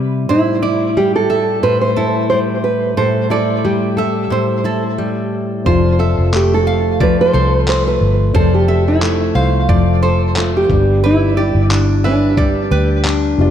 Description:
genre	acoustic pop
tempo	89 BPM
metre	4/4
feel	swing 55% on 16ths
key	unclear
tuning	A4 = 440 Hz
part	fingerpicked plugged-in steel-string acoustic guitar	accompaniment	0.0-13.5 s	A2 to C5	-18 LUFS	left 2 dB	none
part	nylon-string guitar	melody	0.3-13.5 s	D4 to C5	-17 LUFS	right 2 dB	diffuse ambient delay
part	nylon-string guitar	arpeggios	0.3-12.9 s	A4 to F5	-22 LUFS	right 4 dB	diffuse ambient delay
part	dark upright piano	accompaniment	5.6-13.5 s	F3 to D5	-27 LUFS	left 5 dB	none
part	vintage muted fingered electric bass	bass	5.7-13.5 s	F1 to D2	-15 LUFS	equal	none
part	dusty soul sampler-style drum kit	drums	5.7-13.2 s	handclaps, kick drum	-20 LUFS	equal	none
room	moderate plate reverb, RT60 2.1 s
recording	dreamy mix soaked in reverb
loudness	-12 LUFS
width	side -9 dB against mid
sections	0.0-13.5 A section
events	none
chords	0.3 Am7; 5.7 F6; 10.7 G

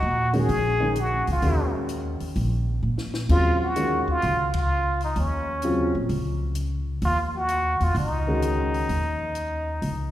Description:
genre	modal jazz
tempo	129 BPM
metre	4/4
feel	swing 68% on 8ths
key	unclear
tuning	A4 = 440 Hz
part	trumpet with plunger mute	melody	0.0-10.1 s	Db4 to Ab4	-26 LUFS	equal	none
part	upright bass	bass	0.0-10.1 s	Bb1 to Bb2	-25 LUFS	equal	none
part	warm baby grand piano	accompaniment	0.3-8.9 s	Db3 to Gb4	-28 LUFS	equal	none
part	compact cocktail drum kit	drums	0.3-10.0 s	crash cymbal, hi-hat, kick drum, ride cymbal, snare drum	-33 LUFS	left 2 dB	none
room	wet concert hall reverb, RT60 2.3 s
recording	recorded in a church or concert hall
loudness	-22 LUFS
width	side -13 dB against mid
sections	0.0-10.1 A section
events	drum fill 2.8-3.3; band accent 4.5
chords	0.0 Ebm7; 3.3 Gb5

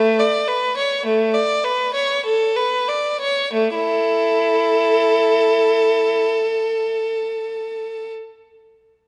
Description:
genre	classical, baroque-style suite movement for unaccompanied violin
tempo	46-53 BPM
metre	3/4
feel	rubato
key	A major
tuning	A4 = 444 Hz
part	clear violin	solo	0.0-8.1 s	A3 to D5	-19 LUFS	equal	none
room	moderate concert hall reverb, RT60 2.4 s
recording	nothing above 10.9 kHz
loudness	-19 LUFS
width	mono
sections	0.0-3.5 A section; 3.5-7.3 B section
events	slowing down 0.0-3.5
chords	0.0 A; 3.5 A5

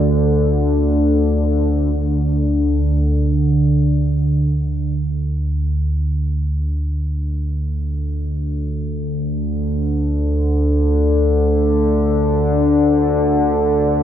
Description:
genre	ambient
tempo	free time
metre	none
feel	none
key	unclear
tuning	A4 = 441 Hz
part	analog drone	solo	0.0-14.0 s	D2 to D3	-15 LUFS	equal	chorus, analog delay
room	wet lush hall reverb, RT60 2.8 s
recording	dreamy mix soaked in reverb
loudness	-15 LUFS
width	side -10 dB against mid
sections	0.0-1.9 A section; 1.9-14.0 A section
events	none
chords	none

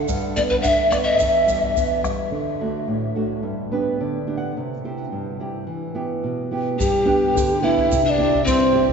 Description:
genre	andean folk, Andean ensemble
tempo	107 BPM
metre	2/4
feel	straight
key	unclear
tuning	A4 = 442 Hz
part	nylon-string guitar	accompaniment	0.0-8.9 s	E2 to F#5	-24 LUFS	right 3 dB	none
part	bombo	percussion	0.1-2.2, 6.8-8.9 s	none	-28 LUFS	left 2 dB	none
part	egg shaker	percussion	0.1-2.2, 6.8-8.6 s	none	-36 LUFS	right 5 dB	none
part	mellow large quena	melody	0.4-2.0, 6.8-8.8 s	B4 to G5	-21 LUFS	right 2 dB	none
part	breathy mellow pan flute	second line	0.4-2.0, 6.8-8.8 s	C4 to E5	-22 LUFS	left 4 dB	none
room	wet cathedral reverb, RT60 6.8 s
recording	recorded in a church or concert hall, nothing above 7.6 kHz, faint mains hum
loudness	-18 LUFS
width	side -6 dB against mid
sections	0.0-2.3 A section; 2.3-6.8 B section; 6.8-8.9 C section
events	nylon-string guitar fill 3.5-4.6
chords	0.1 G; 1.2 Em; 2.3 D; 3.5 G; 4.6 C; 5.7 Em; 6.8 G; 7.9 C

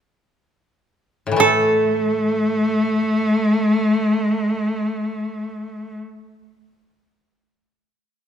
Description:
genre	japanese traditional, Japanese chamber music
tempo	free time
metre	none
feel	none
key	unclear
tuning	A4 = 437 Hz
part	koto	accompaniment	1.3-6.0 s	A2 to A3	-23 LUFS	left 4 dB	none
part	rich cello	melody	1.4-6.0 s	A3	-19 LUFS	left 1 dB	none
part	koto	second line	1.4-6.0 s	A4	-18 LUFS	right 5 dB	none
room	light reverb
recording	minimal, uncompressed stereo recording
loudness	-17 LUFS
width	side -9 dB against mid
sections	0.0-1.4 A section; 1.4-8.3 B section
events	none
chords	none

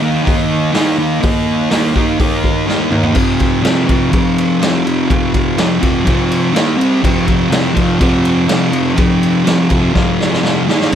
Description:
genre	garage rock duo or trio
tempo	124 BPM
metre	4/4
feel	straight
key	unclear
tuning	A4 = 440 Hz
part	thick fuzz guitar	riff	0.0-10.9 s	F2 to Eb4	-13 LUFS	equal	distortion
part	raw garage drum kit	drums	0.3-10.9 s	crash cymbal, hi-hat, kick drum, ride cymbal, snare drum, toms	-16 LUFS	equal	none
room	moderate studio reverb, RT60 0.5 s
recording	none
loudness	-11 LUFS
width	side -9 dB against mid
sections	0.0-3.2 A section; 3.2-10.9 B section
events	drum fill 2.7-3.2, 10.0-10.9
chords	0.0 Eb5; 3.2 F5; 6.6 Eb5; 6.8 C5; 7.0 F5; 10.7 Eb5

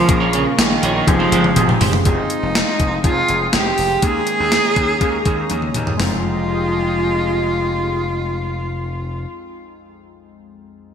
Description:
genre	1980s-style pop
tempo	122 BPM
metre	4/4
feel	straight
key	F minor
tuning	A4 = 440 Hz
part	rich cello	melody	0.0-9.3 s	Db3 to Ab4	-19 LUFS	right 2 dB	digital delay
part	glassy digital keys	accompaniment	0.0-10.9 s	F2 to Bb4	-24 LUFS	left 2 dB	chorus
part	chorused pulse-width pad	sustained chords	0.0-9.2 s	F3 to Eb6	-27 LUFS	equal	none
part	gritty slap bass	bass	0.0-9.2 s	F1 to Eb2	-24 LUFS	left 1 dB	overdrive
part	electric guitar at the edge of break-up	riff	0.1-2.0 s	Ab3 to Db5	-24 LUFS	right 4 dB	lush chorus, digital delay
part	gated 80s digital drum machine	drums	0.1-6.1 s	hi-hat, kick drum, snare drum, tambourine, toms	-18 LUFS	equal	gated reverb, gated reverb snare, overdrive
room	moderate plate reverb, RT60 2.5 s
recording	bright 1980s-style digital production, faint mains hum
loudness	-15 LUFS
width	side -8 dB against mid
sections	0.0-2.1 A section; 2.1-6.0 B section; 6.0-9.9 C section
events	drum fill 1.1-2.1, 5.5-6.0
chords	0.1 Bbm7; 1.1 Fm9; 2.1 Fm7; 4.0 Eb7sus4; 6.0 Fm7

